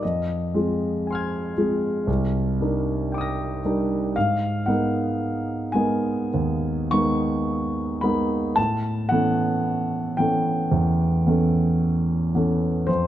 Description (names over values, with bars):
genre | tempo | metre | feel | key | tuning
classical, impressionist solo piano | 48-59 BPM | 4/4 | rubato | unclear | A4 = 440 Hz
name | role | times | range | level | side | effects
clear concert grand piano | solo | 0.0-13.1 s | C2 to Bb6 | -21 LUFS | equal | none
room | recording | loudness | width
moderate concert hall reverb, RT60 1.9 s | close, detailed microphones | -21 LUFS | side -12 dB against mid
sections
0.0-13.1 A section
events
none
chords
0.0 Fm7; 2.1 Cm9; 4.2 G#madd9; 8.6 A9